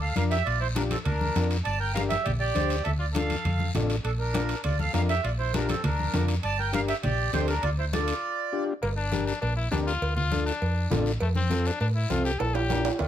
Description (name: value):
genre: latin, cumbia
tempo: 201 BPM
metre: 4/4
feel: straight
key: unclear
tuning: A4 = 441 Hz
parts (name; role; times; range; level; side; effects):
- accordion; melody; 0.0-8.6 s; A4 to A5; -30 LUFS; right 5 dB; none
- clear trumpet; second line; 0.0-13.1 s; A3 to D5; -34 LUFS; left 4 dB; none
- hollow-body short-scale fingered electric bass; bass; 0.0-13.1 s; G1 to A2; -28 LUFS; equal; none
- overdriven combo organ; accompaniment; 0.2-12.9 s; C4 to C5; -30 LUFS; left 4 dB; none
- congas; percussion; 0.2-12.9 s; none; -33 LUFS; left 2 dB; none
- guiro; percussion; 0.2-13.1 s; none; -40 LUFS; left 5 dB; none
- timbales and cowbell; percussion; 0.2-13.1 s; none; -36 LUFS; right 5 dB; none
room: light reverb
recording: close, detailed microphones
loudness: -24 LUFS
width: side -10 dB against mid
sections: 0.0-8.8 A section; 8.8-13.1 B section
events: break 8.2-8.8; trumpet solo 8.8-13.1; drum fill 12.4-13.1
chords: 0.0 Bb; 1.7 Gm; 2.9 Dm; 4.0 Bb; 6.4 Gm; 7.6 Dm; 8.8 Gm; 10.0 Dm; 11.2 F; 12.4 Bb